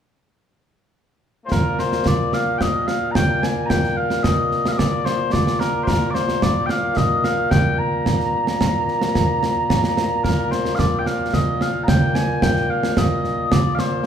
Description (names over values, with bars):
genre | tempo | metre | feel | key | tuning
scottish traditional, Scottish pipe music | 110 BPM | 4/4 | straight | Bb major | A4 = 443 Hz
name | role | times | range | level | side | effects
mellow small bagpipes | melody | 1.5-14.1 s | Bb2 to Bb5 | -20 LUFS | left 1 dB | none
concert snare drum and concert bass drum | drums | 1.5-13.9 s | none | -20 LUFS | right 1 dB | none
room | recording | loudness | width
moderate large studio reverb, RT60 1.4 s | band playing live in one room | -17 LUFS | side -8 dB against mid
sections
0.0-1.5 A section; 1.5-10.2 B section; 10.2-14.1 B section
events
none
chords
none